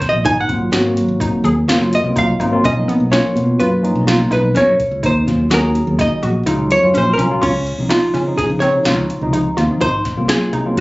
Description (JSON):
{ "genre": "progressive instrumental, band music in an uneven meter", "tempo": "126 BPM", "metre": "5/4", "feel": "straight", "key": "Db major", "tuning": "A4 = 438 Hz", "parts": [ { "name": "archtop guitar, miked and amplified", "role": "melody", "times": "0.0-10.7 s", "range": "Db4 to Ab5", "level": "-17 LUFS", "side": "equal", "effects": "none" }, { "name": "glassy wavetable pluck", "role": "arpeggios", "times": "0.0-10.8 s", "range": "Cb4 to Ab4", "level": "-22 LUFS", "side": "equal", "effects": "chorus, tape echo" }, { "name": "electro analog drum machine", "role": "drums", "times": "0.0-10.8 s", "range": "crash cymbal, hi-hat, kick drum, snare drum", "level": "-22 LUFS", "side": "equal", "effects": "none" }, { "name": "modern bright fingered electric bass", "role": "bass", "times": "0.1-10.8 s", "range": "Gb1 to Db3", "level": "-18 LUFS", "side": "equal", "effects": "none" }, { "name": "tine electric piano", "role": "accompaniment", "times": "0.5-10.8 s", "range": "C3 to Ab4", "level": "-19 LUFS", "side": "equal", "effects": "medium stereo tremolo" } ], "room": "light reverb", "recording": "recorded on a phone in the room, club reverb, compression, nothing above 7.8 kHz", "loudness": "-13 LUFS", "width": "side -21 dB against mid", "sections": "0.0-7.4 A section; 7.4-10.8 B section", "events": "hollow-body jazz guitar solo 0.0-7.4; kick and snare drop out 6.5-7.4", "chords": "0.3 Ab13; 2.6 Cbmaj9#11; 5.0 Ebm7; 7.4 Dbmaj7; 9.8 Ab13" }